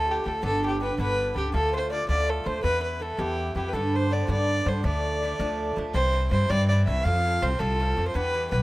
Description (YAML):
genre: celtic folk, Celtic jig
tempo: 109 BPM (dotted quarters)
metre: 6/8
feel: straight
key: D dorian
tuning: A4 = 440 Hz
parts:
  - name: dark fiddle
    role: melody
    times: 0.0-8.6 s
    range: G4 to F5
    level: -27 LUFS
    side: equal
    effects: none
  - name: mellow accordion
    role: second line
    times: 0.0-5.7 s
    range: G4 to D5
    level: -35 LUFS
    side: left 3 dB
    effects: none
  - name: Irish bouzouki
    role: accompaniment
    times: 0.0-8.6 s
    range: G2 to G4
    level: -32 LUFS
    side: right 3 dB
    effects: none
  - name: upright bass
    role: bass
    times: 0.0-8.6 s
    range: G1 to G2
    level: -26 LUFS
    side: equal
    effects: none
room: small room ambience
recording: rough home demo mix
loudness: -23 LUFS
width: side -18 dB against mid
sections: 0.0-5.9 A section; 5.9-8.6 B section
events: none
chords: 0.4 G; 1.5 Dm; 2.6 Em; 3.7 G; 4.8 Dm; 5.9 C; 7.0 F